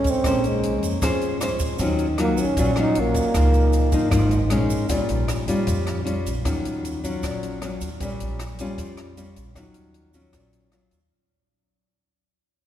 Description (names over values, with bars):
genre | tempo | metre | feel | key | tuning
bossa nova | 155 BPM | 4/4 | straight | Bb minor | A4 = 440 Hz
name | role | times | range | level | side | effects
breathy trombone | melody | 0.0-4.5 s | Ab3 to Eb4 | -25 LUFS | right 2 dB | none
nylon-string guitar | accompaniment | 0.0-11.1 s | Ab2 to Db5 | -24 LUFS | left 1 dB | none
upright bass | bass | 0.0-11.1 s | Ab1 to F2 | -25 LUFS | equal | none
compact cocktail drum kit | drums | 0.0-11.0 s | hi-hat, kick drum, rim click | -30 LUFS | equal | none
tube shaker | percussion | 0.1-11.1 s | none | -39 LUFS | right 5 dB | none
room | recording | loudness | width
wet cathedral reverb, RT60 5.4 s | recorded in a church or concert hall | -20 LUFS | side -11 dB against mid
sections
0.0-4.9 A section; 4.9-11.1 B section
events
fade-out 4.9-11.1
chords
0.3 Bbm9; 1.8 Ebm9; 3.4 Db69; 4.5 Bbm7; 4.9 Bbm6; 6.5 Ebm9; 8.0 Bbm6; 9.6 Ebm9